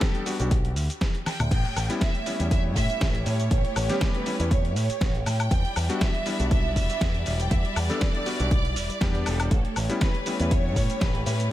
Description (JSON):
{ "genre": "nu-disco, nu disco", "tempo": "120 BPM", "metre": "4/4", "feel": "swing 54% on 16ths", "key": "E dorian", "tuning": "A4 = 441 Hz", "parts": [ { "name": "rich studio violin section", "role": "melody", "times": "0.0-11.5 s", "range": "G4 to G5", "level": "-32 LUFS", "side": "right 2 dB", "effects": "dub echo" }, { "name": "bright electric grand piano", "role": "accompaniment", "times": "0.0-11.5 s", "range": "G3 to A4", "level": "-32 LUFS", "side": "left 2 dB", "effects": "sidechain pumping, dub echo" }, { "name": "dusty soul sampler-style drum kit", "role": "drums", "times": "0.0-11.5 s", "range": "crash cymbal, hi-hat, shaker, snare drum, toms, woodblock", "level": "-32 LUFS", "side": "left 1 dB", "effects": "studio reverb, dub echo" }, { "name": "electronic kick drum", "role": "drums", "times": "0.0-11.1 s", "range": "none", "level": "-24 LUFS", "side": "equal", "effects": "studio reverb" }, { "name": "picked electric bass with an envelope filter", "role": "bass", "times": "0.4-11.5 s", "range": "E1 to A2", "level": "-27 LUFS", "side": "equal", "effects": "none" }, { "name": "clear studio string section", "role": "sustained chords", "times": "1.5-11.5 s", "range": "G3 to D5", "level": "-35 LUFS", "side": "equal", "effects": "sidechain pumping" } ], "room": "digital ambience", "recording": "echo-heavy mix", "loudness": "-22 LUFS", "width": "side -14 dB against mid", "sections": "0.0-11.5 A section", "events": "drum fill 1.3", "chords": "0.0 Em7 (rootless); 1.5 A7; 5.5 Em7; 9.5 A7", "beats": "0.01 0.51 1.01 | 1.51 2.01 2.51 3.01 | 3.51 4.01 4.51 5.01 | 5.51 6.01 6.51 7.01 | 7.51 8.01 8.51 9.01 | 9.51 10.01 10.51 11.01 | 11.51" }